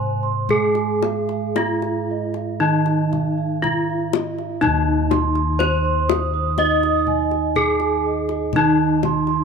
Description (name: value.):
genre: Javanese gamelan.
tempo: 55-61 BPM.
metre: 4/4.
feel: straight.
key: unclear.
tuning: A4 = 440 Hz.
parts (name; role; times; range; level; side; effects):
gamelan-type bronze metallophone; melody; 0.0-9.4 s; Eb4 to Eb5; -22 LUFS; left 4 dB; none.
gamelan-type bronze metallophone; accompaniment; 0.0-9.4 s; C3+20c to Eb4; -26 LUFS; right 11 dB; none.
gamelan-type bronze metallophone; arpeggios; 0.0-9.4 s; Eb5 to Eb6; -25 LUFS; right 10 dB; slapback echo.
gamelan-type bossed gongs; bass; 0.0-9.4 s; Eb2 to Ab4+30c; -24 LUFS; left 1 dB; none.
kendang; percussion; 0.5-9.4 s; none; -26 LUFS; left 12 dB; none.
room: moderate plate reverb, RT60 3.3 s.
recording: 1960s-style stereo with parts hard left and right.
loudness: -17 LUFS.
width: side -6 dB against mid.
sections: 0.0-4.6 A section; 4.6-9.4 B section.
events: none.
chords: none.